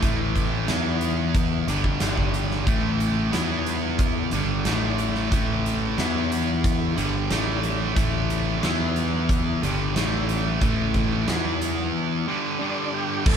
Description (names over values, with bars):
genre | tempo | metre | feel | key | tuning
classic rock | 91 BPM | 4/4 | straight | unclear | A4 = 440 Hz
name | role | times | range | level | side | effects
crunchy overdriven guitar | riff | 0.0-13.4 s | G2 to A4 | -28 LUFS | left 7 dB | none
distorted electric guitar | riff | 0.0-13.4 s | G2 to E4 | -27 LUFS | right 6 dB | overdrive
overdriven fingered electric bass | bass | 0.0-13.4 s | G1 to E2 | -28 LUFS | equal | none
huge arena drum kit | drums | 0.0-13.4 s | crash cymbal, hi-hat, kick drum, snare drum | -26 LUFS | equal | none
overdriven tonewheel organ | melody | 12.6-13.4 s | D4 to A4 | -30 LUFS | equal | chorus vibrato, fast rotary speaker
room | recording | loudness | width
moderate small room reverb, RT60 0.5 s | band playing live in one room | -21 LUFS | side -7 dB against mid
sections
0.0-13.3 A section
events
break 11.9-13.3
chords
0.0 A5; 0.7 E5; 1.7 G5; 2.7 A5; 3.3 E5; 4.3 A5; 6.0 E5; 7.0 A5; 8.6 E5; 9.6 A5; 11.3 E5; 12.3 G5